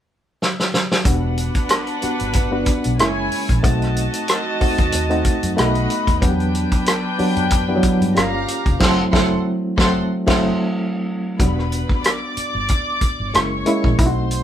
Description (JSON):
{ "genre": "lush 1970s-style soul", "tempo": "93 BPM", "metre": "4/4", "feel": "swing 54% on 16ths", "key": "E minor", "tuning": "A4 = 440 Hz", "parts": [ { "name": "warm soul drum kit", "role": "drums", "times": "0.4-14.4 s", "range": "crash cymbal, hi-hat, kick drum, rim click, snare drum", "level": "-19 LUFS", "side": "equal", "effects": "none" }, { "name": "barky reed electric piano", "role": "accompaniment", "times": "1.0-14.4 s", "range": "F#3 to F#4", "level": "-21 LUFS", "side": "equal", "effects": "overdrive, fast tremolo" }, { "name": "dark studio string section", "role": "second line", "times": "1.1-14.4 s", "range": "D4 to D6", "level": "-24 LUFS", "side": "left 1 dB", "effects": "none" }, { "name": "vintage muted fingered electric bass", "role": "bass", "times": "1.1-14.4 s", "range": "E1 to G2", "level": "-23 LUFS", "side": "equal", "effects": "none" } ], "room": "moderate studio reverb, RT60 0.5 s", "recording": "band playing live in one room", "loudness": "-16 LUFS", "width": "side -10 dB against mid", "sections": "0.0-1.1 A section; 1.1-11.4 B section; 11.4-14.4 C section", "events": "drum fill 0.4-1.1; band accent 8.8-11.4", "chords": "0.0 N.C.; 1.1 Em9; 3.0 F#7; 3.6 B7b9; 5.6 B7; 6.2 Em9; 8.2 Gm7b5; 8.8 F#m7b5; 11.4 Em9; 13.3 F#7", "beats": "0.41 | 1.05 1.70 2.35 2.99 | 3.64 4.28 4.93 5.57 | 6.22 6.87 7.51 8.16 | 8.81 9.45 10.10 10.75 | 11.40 12.04 12.69 13.34 | 13.99" }